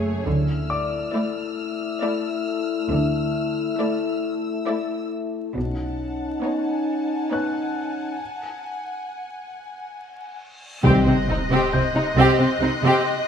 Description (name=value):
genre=cinematic, suspense film score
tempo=68 BPM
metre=3/4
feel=straight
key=unclear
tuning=A4 = 440 Hz
part: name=warm studio violin section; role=melody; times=0.0-13.3 s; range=C#5 to Eb5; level=-29 LUFS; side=left 2 dB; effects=none
part: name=warm studio violin section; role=second line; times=0.0-13.1 s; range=C4 to G#4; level=-24 LUFS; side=left 1 dB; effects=none
part: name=rich studio viola section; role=accompaniment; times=0.0-13.0 s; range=A3 to C4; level=-26 LUFS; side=right 2 dB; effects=none
part: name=mellow French horn section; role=sustained chords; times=0.0-11.2 s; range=A3 to G4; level=-26 LUFS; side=left 4 dB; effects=none
part: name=rich studio cello section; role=bass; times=0.0-6.3, 10.8-12.9 s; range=F#2 to D3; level=-26 LUFS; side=right 2 dB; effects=none
part: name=rich studio double bass section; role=bass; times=0.0-6.3, 10.8-12.7 s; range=F#1 to D2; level=-26 LUFS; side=right 1 dB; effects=none
part: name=clear baby grand piano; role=texture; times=0.0-13.3 s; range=B4 to G6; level=-34 LUFS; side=left 3 dB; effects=none
part: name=warm studio violin section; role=texture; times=0.3-13.3 s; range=F#5 to F#6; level=-34 LUFS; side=left 3 dB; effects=none
part: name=reverse cymbal and sub drop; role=sound effects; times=10.6-13.3 s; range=none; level=-30 LUFS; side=equal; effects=none
part: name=mellow trombone section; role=sustained chords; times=10.8-11.2 s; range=Eb3 to G3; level=-30 LUFS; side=right 2 dB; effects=none
part: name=timpani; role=percussion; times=10.8-12.1 s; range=C3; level=-24 LUFS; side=equal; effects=none
room=moderate scoring stage reverb, RT60 1.8 s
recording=minimal, uncompressed stereo recording, vinyl crackle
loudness=-20 LUFS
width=side -7 dB against mid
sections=0.0-10.8 A section; 10.8-13.3 B section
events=break 8.2-10.8; reverse cymbal 10.6; impact 10.8-13.3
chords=0.3 Dsus2; 5.6 Badd9; 8.2 F#sus2; 10.8 Cm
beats=| 0.26 1.14 2.02 | 2.91 3.79 4.67 | 5.55 6.43 7.32 | 8.20 9.08 9.96 | 10.85 11.73 12.61